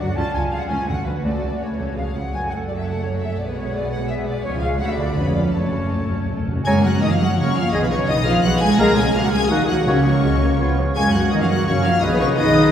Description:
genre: quick classical-period movement for symphony orchestra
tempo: 168 BPM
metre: 3/4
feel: straight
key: F# minor, F# major from 6.7 s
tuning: A4 = 440 Hz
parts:
  - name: clear studio violin section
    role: melody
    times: 0.0-12.7 s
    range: E#4 to A#6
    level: -30 LUFS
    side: left 5 dB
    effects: none
  - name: bright studio violin section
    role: second line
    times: 0.0-12.7 s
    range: B4 to A#5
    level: -30 LUFS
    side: left 2 dB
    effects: none
  - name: mellow small flute group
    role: second line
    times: 0.0-12.7 s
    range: B4 to A#5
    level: -27 LUFS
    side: left 1 dB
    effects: none
  - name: rich studio viola section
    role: accompaniment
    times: 0.0-12.7 s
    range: E#3 to C#5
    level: -28 LUFS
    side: right 1 dB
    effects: none
  - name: warm French horn section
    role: sustained chords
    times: 0.0-12.7 s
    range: F#3 to A#4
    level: -25 LUFS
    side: left 3 dB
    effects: none
  - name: rich studio double bass section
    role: bass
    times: 0.0-12.7 s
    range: E#1 to F#2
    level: -25 LUFS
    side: right 1 dB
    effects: none
  - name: warm studio cello section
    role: bass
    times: 0.0-12.7 s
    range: E#2 to A#3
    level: -22 LUFS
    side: right 2 dB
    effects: none
  - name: timpani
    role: percussion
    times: 5.5-6.6, 9.9-10.4 s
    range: F#2 to C#3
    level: -27 LUFS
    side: right 1 dB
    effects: none
  - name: clear oboe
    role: second line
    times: 6.7-12.7 s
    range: B4 to A#5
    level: -30 LUFS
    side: right 1 dB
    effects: none
  - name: warm clarinet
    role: second line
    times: 6.7-12.7 s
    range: E#4 to C#5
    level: -29 LUFS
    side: left 2 dB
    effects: none
  - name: mellow bassoon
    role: accompaniment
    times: 6.7-12.7 s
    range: F#3 to C#4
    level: -26 LUFS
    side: right 1 dB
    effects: none
room: wet church reverb, RT60 3.0 s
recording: heard from further back in the room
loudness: -17 LUFS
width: side -9 dB against mid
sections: 0.0-6.7 A section; 6.7-12.7 A section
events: timpani fill 5.5-6.7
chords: 0.2 C#; 0.9 D; 1.2 F#m/C#; 2.0 C#; 2.3 F#m; 3.4 Bm69; 4.5 C#; 4.8 D; 5.2 C#7/E#; 5.5 F#m; 6.7 F#; 7.7 G#m/B; 8.8 C#; 9.5 D#m; 9.9 F#/C#; 10.6 C#; 11.0 F#; 12.0 G#m/B

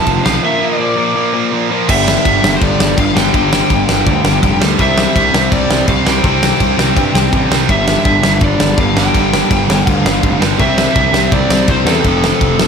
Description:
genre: punk rock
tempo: 165 BPM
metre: 4/4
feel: straight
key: unclear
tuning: A4 = 440 Hz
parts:
  - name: lead guitar through a small cranked amp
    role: melody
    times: 0.0-12.7 s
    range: A4 to A5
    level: -17 LUFS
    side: left 1 dB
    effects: overdrive, ping-pong delay
  - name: cranked stack guitar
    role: riff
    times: 0.0-12.7 s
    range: F2 to C4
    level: -18 LUFS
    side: right 14 dB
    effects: overdrive
  - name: overdriven electric guitar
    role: riff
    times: 0.0-12.7 s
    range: F2 to C4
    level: -22 LUFS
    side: right 2 dB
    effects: none
  - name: sludgy distorted guitar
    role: riff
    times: 0.0-12.7 s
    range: F2 to C4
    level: -19 LUFS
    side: left 12 dB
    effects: overdrive
  - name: fuzz picked electric bass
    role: bass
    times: 0.1-12.7 s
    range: F1 to G2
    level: -18 LUFS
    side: equal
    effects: overdrive
  - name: big rock drum kit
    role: drums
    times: 0.1-12.7 s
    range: crash cymbal, kick drum, ride cymbal, snare drum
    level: -15 LUFS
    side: equal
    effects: none
room: little or no reverb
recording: none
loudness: -10 LUFS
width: side -6 dB against mid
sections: 0.0-1.9 A section; 1.9-12.7 B section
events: none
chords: 0.4 Bb; 1.9 G5; 4.8 C; 7.7 G5; 10.6 C; 12.0 F

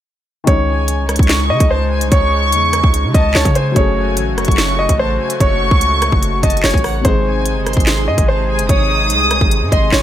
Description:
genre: hip hop, drill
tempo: 146 BPM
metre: 4/4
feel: half-time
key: unclear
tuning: A4 = 442 Hz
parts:
  - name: felt-muted upright piano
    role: accompaniment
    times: 0.4-10.0 s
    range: B#2 to G#4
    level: -25 LUFS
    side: left 7 dB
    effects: low-pass filter
  - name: bright concert grand piano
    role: melody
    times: 0.5-10.0 s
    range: B#4 to D#5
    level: -20 LUFS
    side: equal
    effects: low-pass filter, tape echo
  - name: warm analog pad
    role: sustained chords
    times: 0.5-10.0 s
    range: B#2 to G#4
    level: -24 LUFS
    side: equal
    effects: chorus, tremolo
  - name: hard-hitting 808-style bass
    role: bass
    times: 0.5-10.0 s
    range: F#1 to C#3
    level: -18 LUFS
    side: equal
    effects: none
  - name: drill drum kit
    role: drums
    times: 0.5-10.0 s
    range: handclaps, hi-hat, kick drum, rim click, snare drum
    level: -15 LUFS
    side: equal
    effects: none
  - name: warm studio violin section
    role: second line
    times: 0.7-10.0 s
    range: F#5 to D#6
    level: -19 LUFS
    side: equal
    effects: tape echo
room: small room ambience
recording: none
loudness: -12 LUFS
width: side -11 dB against mid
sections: 0.5-10.0 A section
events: none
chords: 0.5 C#sus2; 3.8 F#madd9; 7.0 G#

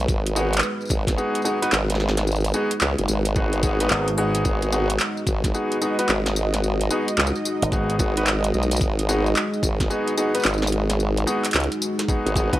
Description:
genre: glitch hop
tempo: 110 BPM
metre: 4/4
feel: swing 63% on 16ths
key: G# minor pentatonic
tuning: A4 = 440 Hz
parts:
  - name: dark analog pad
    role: sustained chords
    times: 0.0-12.6 s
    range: G#3 to D#5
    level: -28 LUFS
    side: equal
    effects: chorus, vintage 12-bit sampler grit, sidechain pumping
  - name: formant-sweep wobble bass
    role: bass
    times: 0.0-12.5 s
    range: F#1 to C#2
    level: -22 LUFS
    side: equal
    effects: chorus
  - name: dubstep drum kit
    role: drums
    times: 0.1-12.6 s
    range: handclaps, hi-hat, snare drum, tambourine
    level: -25 LUFS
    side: equal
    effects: none
  - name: electronic kick drum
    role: drums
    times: 0.1-12.6 s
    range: none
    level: -24 LUFS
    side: equal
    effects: none
  - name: bright grand piano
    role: stabs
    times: 0.4-12.6 s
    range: B3 to B4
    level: -26 LUFS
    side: left 1 dB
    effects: vintage 12-bit sampler grit, sidechain pumping, tape echo
  - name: slap bass with an envelope filter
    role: bass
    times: 3.9-8.0, 12.5-12.6 s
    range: G#1 to C#2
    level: -24 LUFS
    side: equal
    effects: tube saturation
room: little or no reverb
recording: dry, gritty hardware recording, vinyl crackle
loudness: -19 LUFS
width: side -15 dB against mid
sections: 0.0-12.6 A section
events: none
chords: 0.0 G#m7

